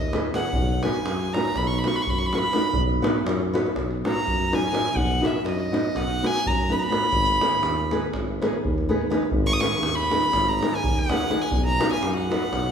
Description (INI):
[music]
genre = balkan folk, Balkan wedding band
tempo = 246 BPM (eighths)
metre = 9/8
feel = straight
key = B major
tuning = A4 = 440 Hz
[part]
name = warm violin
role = melody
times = 0.0-12.7 s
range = D#5 to D#6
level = -25 LUFS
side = right 1 dB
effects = none
[part]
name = mellow tuba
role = bass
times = 0.0-12.7 s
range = G#1 to F#2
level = -28 LUFS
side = equal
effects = none
[part]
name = davul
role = percussion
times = 0.0-12.7 s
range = none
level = -28 LUFS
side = equal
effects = none
[part]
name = nylon-string guitar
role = accompaniment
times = 0.1-12.4 s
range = B3 to B4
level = -26 LUFS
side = left 1 dB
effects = none
[sound]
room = wet recital hall reverb, RT60 1.6 s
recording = recorded in a church or concert hall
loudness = -21 LUFS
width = side -7 dB against mid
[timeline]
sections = 0.0-12.7 A section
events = violin solo 0.0-12.7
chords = 0.0 G#m; 0.6 B; 7.1 G#m; 11.5 B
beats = 0.07 0.31 | 0.55 0.80 1.04 1.28 1.53 1.77 2.01 2.26 2.50 | 2.74 2.99 3.23 3.47 3.72 3.96 4.20 4.45 4.69 | 4.93 5.18 5.42 5.67 5.91 6.15 6.40 6.64 6.88 | 7.13 7.37 7.62 7.86 8.11 8.35 8.59 8.84 9.08 | 9.32 9.57 9.81 10.05 10.30 10.54 10.79 11.03 11.27 | 11.51 11.76 12.00 12.24 12.48